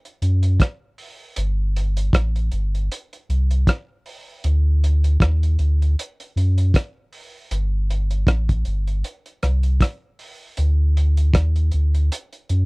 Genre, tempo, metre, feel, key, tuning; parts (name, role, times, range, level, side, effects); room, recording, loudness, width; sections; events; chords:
roots reggae; 78 BPM; 4/4; swing 56% on 16ths; A4 = 440 Hz
cloth-damped thuddy drum kit; drums; 0.1-12.7 s; hi-hat, kick drum, rim click; -20 LUFS; equal
warm sub bass; bass; 0.2-12.7 s; G1 to F#2; -17 LUFS; equal
little or no reverb; dry, close 1970s-style studio recording; -18 LUFS; side -33 dB against mid
0.0-12.7 A section